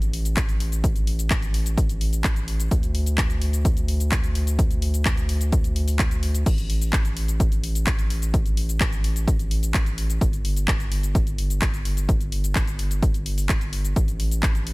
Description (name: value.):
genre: EDM, festival progressive house.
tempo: 128 BPM.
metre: 4/4.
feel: straight.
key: unclear.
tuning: A4 = 440 Hz.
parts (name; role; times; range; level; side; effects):
saturated sub bass; bass; 0.0-14.7 s; G1 to D2; -24 LUFS; equal; sidechain pumping.
house drum kit; drums; 0.0-14.7 s; crash cymbal, handclaps, hi-hat, shaker; -29 LUFS; left 1 dB; none.
electronic kick drum; drums; 0.4-14.5 s; none; -23 LUFS; equal; none.
room: digital ambience.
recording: none.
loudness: -20 LUFS.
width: side -24 dB against mid.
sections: 0.0-14.7 A section.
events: none.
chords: none.